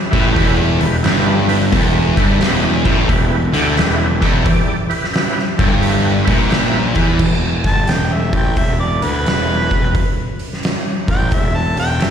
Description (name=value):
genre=blues rock power trio and southern rock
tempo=88 BPM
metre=4/4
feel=swing 65% on 8ths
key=E minor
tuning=A4 = 440 Hz
part: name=overdriven tonewheel organ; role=sustained chords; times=0.1-7.1 s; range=E4 to D5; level=-22 LUFS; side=right 3 dB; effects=slow rotary speaker, chorus vibrato
part: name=thick fuzz guitar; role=riff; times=0.1-7.2 s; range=E2 to E3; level=-17 LUFS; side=equal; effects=distortion, slapback echo
part: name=fuzz picked electric bass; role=bass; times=0.1-12.1 s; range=E1 to E2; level=-18 LUFS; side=equal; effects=overdrive
part: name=oversized low-tuned drum kit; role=drums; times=0.1-12.1 s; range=crash cymbal, hi-hat, kick drum, snare drum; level=-18 LUFS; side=equal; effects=none
part: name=warm harmonica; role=melody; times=7.7-12.1 s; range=B4 to A5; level=-21 LUFS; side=right 1 dB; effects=overdrive, slapback echo, digital delay
room=little or no reverb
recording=live gig heard through the venue's PA, recital hall reverb, faint mains hum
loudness=-13 LUFS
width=side -8 dB against mid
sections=0.0-7.2 A section; 7.2-12.1 B section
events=harmonica solo 7.2-12.1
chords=0.0 Em; 7.2 E5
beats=0.37 1.05 | 1.73 2.41 3.10 3.78 | 4.46 5.14 5.83 6.51 | 7.20 7.89 8.57 9.26 | 9.95 10.63 11.32 12.01